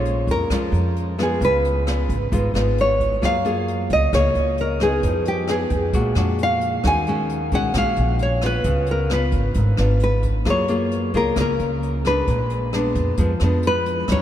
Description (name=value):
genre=bossa nova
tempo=133 BPM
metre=4/4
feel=straight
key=unclear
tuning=A4 = 440 Hz
part: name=nylon-string guitar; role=melody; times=0.0-14.2 s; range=G4 to Ab5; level=-22 LUFS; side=equal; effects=none
part: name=nylon-string guitar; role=accompaniment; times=0.0-14.2 s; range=Ab2 to Ab4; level=-23 LUFS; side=left 1 dB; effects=none
part: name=upright bass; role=bass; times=0.0-14.2 s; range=Ab1 to Gb2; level=-23 LUFS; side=equal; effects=none
part: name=jazz brush drum kit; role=drums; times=0.1-14.2 s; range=hi-hat, kick drum, rim click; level=-28 LUFS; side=equal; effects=none
room=moderate cathedral reverb, RT60 5.2 s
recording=in a vast, echoing space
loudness=-18 LUFS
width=side -11 dB against mid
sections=0.0-14.2 A section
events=none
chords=0.0 Bbm7; 1.4 Db7; 3.2 Gbmaj9; 5.0 Fm7b5; 5.9 Bb7b13; 6.8 Ebm11; 8.7 Db7b9; 10.5 Gbmaj9; 12.3 Bb7b9